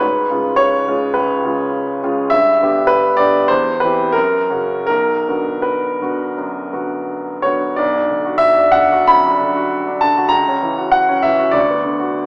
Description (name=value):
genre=classical, romantic character piece for solo piano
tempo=76-107 BPM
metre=4/4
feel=rubato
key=B minor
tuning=A4 = 440 Hz
part: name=clear baby grand piano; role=solo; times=0.0-12.3 s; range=B1 to B5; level=-13 LUFS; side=equal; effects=none
room=wet recital hall reverb, RT60 1.6 s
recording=worn, warbling old tape, cassette tape, warbly pitch drift, small speaker sound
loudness=-13 LUFS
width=side -29 dB against mid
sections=0.0-7.8 A section; 7.8-12.3 B section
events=none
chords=0.0 C#7/G#; 2.3 G6; 3.5 C/E; 4.2 F#; 4.9 Bm; 10.3 F#7/C#; 11.6 Bm/D